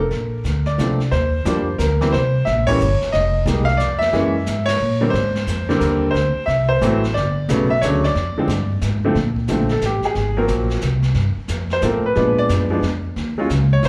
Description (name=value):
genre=jazz piano trio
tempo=179 BPM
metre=3/4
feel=swing 64% on 8ths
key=unclear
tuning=A4 = 439 Hz
part: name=clear baby grand piano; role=melody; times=0.0-13.9 s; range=C#3 to F5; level=-21 LUFS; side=equal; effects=slapback echo
part: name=upright bass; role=bass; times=0.0-13.9 s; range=F1 to Bb2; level=-22 LUFS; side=equal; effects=none
part: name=jazz brush drum kit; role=drums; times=0.1-13.9 s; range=brushed snare drum, hi-hat, kick drum, ride cymbal, snare drum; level=-32 LUFS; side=equal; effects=none
room=studio reverb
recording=live gig heard through the venue's PA, club reverb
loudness=-19 LUFS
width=mono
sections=0.0-1.1 A section; 1.1-9.2 B section; 9.2-13.9 C section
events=band accent 2.6, 4.6; grand piano solo 9.2-13.9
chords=0.0 Bbadd9; 1.1 Ebmaj9; 2.1 C7b9; 3.1 F7(no3); 4.1 Gb9; 5.1 Abmaj9#11; 6.1 D7sus2; 7.1 Gmaj9#11; 8.2 Fm69; 9.2 Bbmaj7(no3); 10.2 Ab13; 11.2 Gm11; 12.2 Bb7b9; 13.2 Eb7(no3)